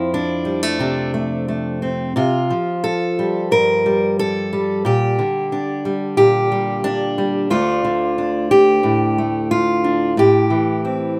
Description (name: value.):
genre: folk, solo fingerstyle acoustic guitar.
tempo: 90 BPM.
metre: 4/4.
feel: straight.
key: D minor.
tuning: A4 = 440 Hz.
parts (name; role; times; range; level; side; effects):
fingerpicked steel-string acoustic guitar; solo; 0.0-11.2 s; D2 to Bb4; -18 LUFS; equal; slapback echo.
room: little or no reverb.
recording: recorded outdoors, with no room sound.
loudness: -18 LUFS.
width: mono.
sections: 0.0-11.2 A section.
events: none.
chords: 0.0 F; 2.2 Csus4; 4.9 Gm/Bb; 7.5 Dm; 10.2 Am7.